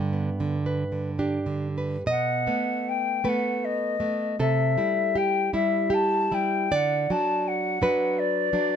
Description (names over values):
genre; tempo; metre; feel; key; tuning
romantic duo for flute and classical guitar; 64-84 BPM; 3/4; rubato; unclear; A4 = 440 Hz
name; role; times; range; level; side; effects
nylon-string guitar; accompaniment; 0.0-8.8 s; G2 to G5; -25 LUFS; right 2 dB; none
silver concert flute; melody; 2.1-8.8 s; D5 to A5; -25 LUFS; left 5 dB; none
room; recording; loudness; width
light reverb; close, detailed microphones; -23 LUFS; side -8 dB against mid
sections
0.0-2.1 A section; 2.1-8.8 B section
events
none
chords
0.0 G; 2.1 B7; 4.4 C; 6.7 D